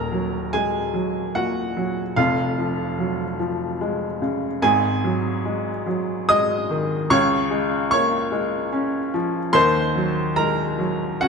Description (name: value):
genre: neoclassical minimalist piano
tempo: 73 BPM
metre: 3/4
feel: rubato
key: Db major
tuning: A4 = 437 Hz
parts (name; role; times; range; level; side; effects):
- warm upright piano; solo; 0.0-11.3 s; Eb1 to Eb6; -20 LUFS; equal; none
room: moderate concert hall reverb, RT60 2.3 s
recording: close, detailed microphones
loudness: -20 LUFS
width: side -5 dB against mid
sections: 0.0-11.3 A section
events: none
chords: 0.0 Ebm; 2.2 Db/F; 4.6 Ab5; 7.1 Db; 9.5 Ebm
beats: 0.53 1.35 | 2.17 2.98 3.80 | 4.62 5.43 6.28 | 7.10 7.91 8.72 | 9.55 10.38 11.22